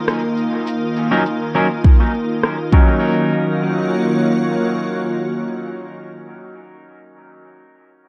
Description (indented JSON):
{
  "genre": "ambient dub",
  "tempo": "102 BPM",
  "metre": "4/4",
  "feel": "straight",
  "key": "Eb minor",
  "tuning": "A4 = 440 Hz",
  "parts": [
    { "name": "soft additive organ-like pad", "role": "sustained chords", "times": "0.0-6.1 s", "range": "Eb3 to Eb5", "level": "-22 LUFS", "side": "equal", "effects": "ensemble chorus, built-in reverb" },
    { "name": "electronic rim click and cabasa", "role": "drums", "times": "0.1-2.6 s", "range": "none", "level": "-25 LUFS", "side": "equal", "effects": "low-pass filter on perc, low-pass filter on snare, dub echo" },
    { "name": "electric guitar at the edge of break-up", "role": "stabs", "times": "1.1-5.9 s", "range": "Gb3 to Bb4", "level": "-24 LUFS", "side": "equal", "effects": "vintage 12-bit sampler grit, low-pass filter, dub echo" },
    { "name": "electronic kick drum", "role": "drums", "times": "1.8-2.8 s", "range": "none", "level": "-13 LUFS", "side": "equal", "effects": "none" }
  ],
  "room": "light reverb",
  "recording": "none",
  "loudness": "-17 LUFS",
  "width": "mono",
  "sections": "0.0-3.0 A section; 3.0-5.4 B section",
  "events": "filter sweep on drum 0.0-3.0",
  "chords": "0.0 Ebm7",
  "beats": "0.08 | 0.67 1.25 1.84 2.43 | 3.02 3.61 4.20 4.78"
}